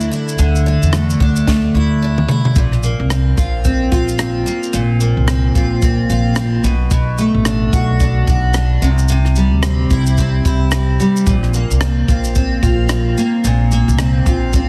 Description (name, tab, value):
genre	acoustic pop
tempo	110 BPM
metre	4/4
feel	swing 60% on 16ths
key	unclear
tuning	A4 = 440 Hz
part	picked steel-string acoustic guitar	accompaniment	0.0-14.7 s	Bb2 to F#4	-19 LUFS	equal	double-tracked
part	upright bass	bass	0.0-14.7 s	A1 to E2	-18 LUFS	equal	none
part	compact cocktail drum kit	drums	0.0-14.7 s	kick drum, rim click, shaker, snare drum, toms	-21 LUFS	equal	none
room	small room ambience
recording	heavily compressed radio sound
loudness	-15 LUFS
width	mono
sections	0.0-2.6 A section; 2.6-14.7 B section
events	drum fill 1.5-2.6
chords	0.0 Dsus2; 2.6 Bbsus2; 6.6 Bm7; 8.8 C; 11.3 Bbsus2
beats	| 0.39 0.93 1.48 2.02 | 2.56 3.11 3.65 4.19 | 4.74 5.28 5.83 6.37 | 6.91 7.46 8.00 8.55 | 9.09 9.63 10.18 10.72 | 11.27 11.81 12.36 12.90 | 13.44 13.99 14.53